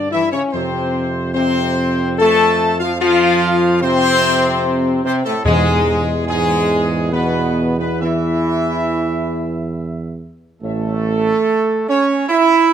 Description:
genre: classical.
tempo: 66-74 BPM.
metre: 3/4.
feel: straight.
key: unclear.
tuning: A4 = 440 Hz.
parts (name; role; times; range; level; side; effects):
bright trumpet section; melody; 0.0-12.7 s; G#4 to A5; -21 LUFS; equal; none.
bright trombone section; sustained chords; 0.0-12.7 s; G#2 to E4; -19 LUFS; right 4 dB; none.
warm French horn section; sustained chords; 0.0-10.9 s; G#3 to E5; -18 LUFS; left 4 dB; none.
warm tuba; bass; 0.0-11.3 s; A1 to G2; -22 LUFS; right 3 dB; none.
timpani; percussion; 5.5-6.7 s; E2; -21 LUFS; equal; none.
room: moderate recital hall reverb, RT60 1.3 s.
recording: close, detailed microphones.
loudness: -14 LUFS.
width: side -9 dB against mid.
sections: 0.0-10.6 A section; 10.6-12.7 B section.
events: none.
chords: 0.0 G5; 0.5 F5; 5.5 E; 10.6 A.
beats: | 0.53 1.35 2.19 | 3.00 3.82 4.63 | 5.45 6.28 7.12 | 8.01 8.89 9.75 | 10.63 11.47 12.29.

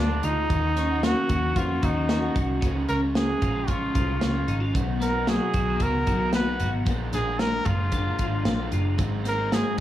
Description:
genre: jangly indie pop.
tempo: 113 BPM.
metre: 4/4.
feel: straight.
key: Db major.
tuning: A4 = 440 Hz.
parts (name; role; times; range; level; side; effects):
clear trumpet; melody; 0.0-9.8 s; D4 to Cb5; -28 LUFS; right 1 dB; plate reverb, digital delay.
overdriven semi-hollow guitar; accompaniment; 0.0-9.8 s; Ab2 to Ab4; -34 LUFS; right 4 dB; plate reverb.
twelve-string electric guitar; arpeggios; 0.0-9.8 s; Ab2 to Gb4; -28 LUFS; left 3 dB; ensemble chorus, digital delay.
vintage muted picked electric bass; bass; 0.0-9.6 s; Gb1 to F2; -28 LUFS; equal; none.
modern studio drum kit; drums; 0.2-9.8 s; hi-hat, kick drum, snare drum; -28 LUFS; equal; none.
room: light reverb.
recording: small room ambience.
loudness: -22 LUFS.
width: side -12 dB against mid.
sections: 0.0-9.8 A section.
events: none.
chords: 0.5 Ebm7; 2.6 Db; 4.7 Cb; 6.9 Bb7; 9.0 Ab.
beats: | 0.50 1.03 1.56 2.09 | 2.62 3.15 3.68 4.21 | 4.75 5.28 5.81 6.34 | 6.87 7.40 7.93 8.46 | 8.99 9.52.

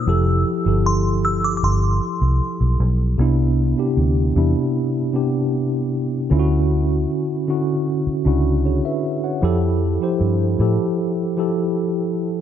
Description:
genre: contemporary R&B.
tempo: 77 BPM.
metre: 4/4.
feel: straight.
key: C major.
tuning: A4 = 439 Hz.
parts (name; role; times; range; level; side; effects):
glassy synth bell; melody; 0.0-2.8 s; C6 to E6; -24 LUFS; equal; chorus, tape echo.
mellow tine electric piano; accompaniment; 0.0-12.4 s; C3 to F#5; -20 LUFS; equal; medium stereo tremolo.
vintage muted fingered electric bass; bass; 0.1-10.8 s; F1 to A2; -18 LUFS; equal; none.
room: light reverb.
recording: dark, warm production, nothing above 7.9 kHz.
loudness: -17 LUFS.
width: side -10 dB against mid.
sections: 0.0-3.2 A section; 3.2-12.4 B section.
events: none.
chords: 0.1 Fmaj9; 3.2 Cmaj9; 6.3 Dmaj9; 9.4 Fmaj9.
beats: | 0.07 0.85 1.63 2.41 | 3.19 3.97 4.75 5.53 | 6.31 7.08 7.86 8.64 | 9.42 10.20 10.98 11.76.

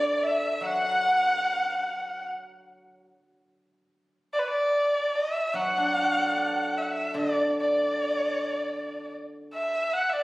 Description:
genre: chinese traditional, Chinese chamber ensemble.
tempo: 75 BPM.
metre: 4/4.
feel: rubato.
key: D gong mode.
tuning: A4 = 440 Hz.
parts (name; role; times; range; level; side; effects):
warm erhu; melody; 0.0-10.2 s; B4 to F#5; -25 LUFS; equal; none.
dark violin; second line; 0.0-2.2 s; D5 to F#5; -26 LUFS; left 1 dB; none.
steel-string zither; accompaniment; 0.0-9.5 s; D3 to D5; -32 LUFS; equal; none.
room: wet recital hall reverb, RT60 1.4 s.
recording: recorded on a phone in the room, studio reverb, compression.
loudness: -24 LUFS.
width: side -19 dB against mid.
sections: 0.0-10.2 A section.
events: none.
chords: none.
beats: | 0.64 1.45 2.26 3.08 | 3.91 4.74 5.55 6.35 | 7.15 7.95 8.75 9.54.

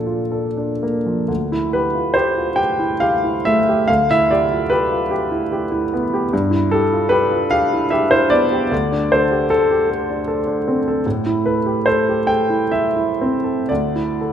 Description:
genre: classical, impressionist solo piano.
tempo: 56-78 BPM.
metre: 3/4.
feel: rubato.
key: D dorian.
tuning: A4 = 440 Hz.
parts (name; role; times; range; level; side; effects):
clear grand piano; solo; 0.0-14.3 s; D2 to G5; -16 LUFS; equal; none.
room: moderate concert hall reverb, RT60 1.8 s.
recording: none.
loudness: -15 LUFS.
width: side -9 dB against mid.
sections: 0.0-1.3 A section; 1.3-14.3 B section.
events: none.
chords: 0.0 Bbmaj7; 1.3 Dmadd9; 3.9 Em7/D; 6.3 G6; 8.7 D5; 11.1 Am7; 13.7 Dsus2.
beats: 0.31 | 1.29 2.16 3.02 | 3.88 4.70 5.51 | 6.32 7.12 7.93 | 8.71 9.49 10.27 | 11.05 11.85 12.71 | 13.69.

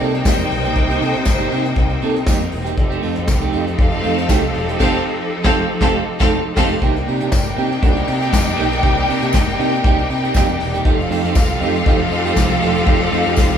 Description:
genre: disco.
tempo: 119 BPM.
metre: 4/4.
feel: swing 56% on 16ths.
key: C dorian.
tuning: A4 = 439 Hz.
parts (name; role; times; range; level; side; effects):
clear studio string section; second line; 0.0-13.6 s; C4 to G5; -22 LUFS; left 2 dB; none.
clean electric guitar; accompaniment; 0.0-13.5 s; A3 to A4; -22 LUFS; right 6 dB; none.
clear studio string section; sustained chords; 0.0-13.6 s; C3 to D5; -22 LUFS; equal; none.
picked electric bass with an envelope filter; bass; 0.0-13.6 s; E1 to C3; -23 LUFS; equal; none.
soft brush drum kit; drums; 0.1-13.6 s; crash cymbal, hi-hat, kick drum, snare drum; -19 LUFS; left 1 dB; none.
tambourine; percussion; 0.3-13.5 s; none; -32 LUFS; left 4 dB; none.
room: moderate large studio reverb, RT60 1.3 s.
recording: band playing live in one room.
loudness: -14 LUFS.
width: side -8 dB against mid.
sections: 0.0-6.8 A section; 6.8-13.6 B section.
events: band accent 4.8-6.8.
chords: 0.0 Cm7; 2.8 F9; 6.8 Cm7; 10.9 F9.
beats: 0.25 | 0.76 1.26 1.77 2.27 | 2.78 3.28 3.79 4.29 | 4.80 5.30 5.81 6.31 | 6.82 7.32 7.83 8.33 | 8.84 9.34 9.84 10.35 | 10.85 11.36 11.86 12.36 | 12.87 13.37.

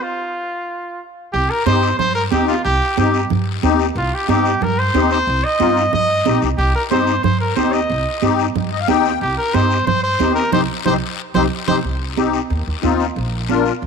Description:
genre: latin, cumbia.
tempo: 183 BPM.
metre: 4/4.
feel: straight.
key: C minor.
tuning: A4 = 440 Hz.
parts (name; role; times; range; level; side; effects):
clear trumpet; melody; 0.0-11.8 s; F4 to Eb5; -19 LUFS; equal; none.
upright bass; bass; 1.3-13.9 s; Bb1 to G2; -22 LUFS; right 1 dB; none.
congas; percussion; 1.3-13.9 s; none; -21 LUFS; right 16 dB; none.
guiro; percussion; 1.3-13.9 s; none; -31 LUFS; left 14 dB; none.
musette accordion; accompaniment; 1.7-13.7 s; C4 to G5; -20 LUFS; left 11 dB; none.
room: light reverb, small room ambience.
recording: 1960s-style stereo with parts hard left and right.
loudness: -15 LUFS.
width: side -6 dB against mid.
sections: 0.0-1.3 A section; 1.3-11.8 B section; 11.8-13.9 C section.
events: stop 0.0-1.3; accordion fill 8.6-9.2; band accent 10.5-11.8; drum fill 11.2-11.8.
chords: 0.0 N.C.; 1.3 Cm; 13.2 Bb.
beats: | 0.02 0.35 0.68 1.01 | 1.34 1.66 1.99 2.32 | 2.65 2.98 3.31 3.63 | 3.96 4.29 4.62 4.95 | 5.27 5.60 5.93 6.26 | 6.59 6.91 7.24 7.57 | 7.90 8.23 8.56 8.88 | 9.21 9.54 9.87 10.20 | 10.53 10.86 11.19 11.51 | 11.84 12.17 12.50 12.83 | 13.16 13.49 13.82.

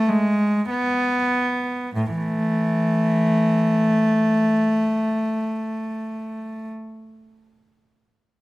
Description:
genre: classical, baroque-style suite movement for unaccompanied cello.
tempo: 50 BPM.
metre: 4/4.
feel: rubato.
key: unclear.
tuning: A4 = 440 Hz.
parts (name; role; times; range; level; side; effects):
rich cello; solo; 0.0-6.7 s; A2 to B3; -19 LUFS; equal; none.
room: light reverb.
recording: close, detailed microphones.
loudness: -19 LUFS.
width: side -19 dB against mid.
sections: 0.0-2.0 A section; 2.0-6.7 B section.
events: slowing down 0.0-2.0.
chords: none.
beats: 0.68 | 1.96 3.14 4.33 5.51.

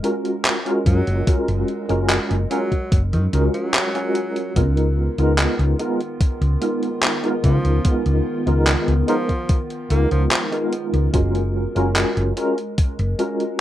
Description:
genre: vaporwave.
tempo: 73 BPM.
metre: 4/4.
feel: straight.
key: F# major.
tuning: A4 = 440 Hz.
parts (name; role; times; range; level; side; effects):
tine electric piano; accompaniment; 0.0-13.6 s; G#3 to A#4; -22 LUFS; equal; medium tremolo, ensemble chorus, analog delay.
warbly tape-like pad; sustained chords; 0.0-13.6 s; D#3 to A#4; -30 LUFS; right 1 dB; chorus, built-in reverb, phaser.
gated 80s digital drum machine; drums; 0.0-13.6 s; handclaps, hi-hat; -22 LUFS; equal; gated reverb.
clear tenor saxophone; melody; 0.9-10.4 s; D#3 to A#3; -30 LUFS; equal; vintage 12-bit sampler grit, tape echo.
hollow-body short-scale fingered electric bass; bass; 0.9-13.1 s; F#1 to C#3; -19 LUFS; equal; none.
electronic kick drum; drums; 0.9-12.9 s; none; -18 LUFS; equal; none.
room: light reverb.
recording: rough home demo mix, cassette tape.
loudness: -17 LUFS.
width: side -13 dB against mid.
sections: 0.0-13.6 A section.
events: none.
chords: 0.0 F#maj9; 4.6 C#13; 11.1 F#maj9.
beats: 0.45 | 1.27 2.10 2.92 3.74 | 4.56 5.38 6.21 7.03 | 7.85 8.67 9.49 10.31 | 11.14 11.96 12.78 13.60.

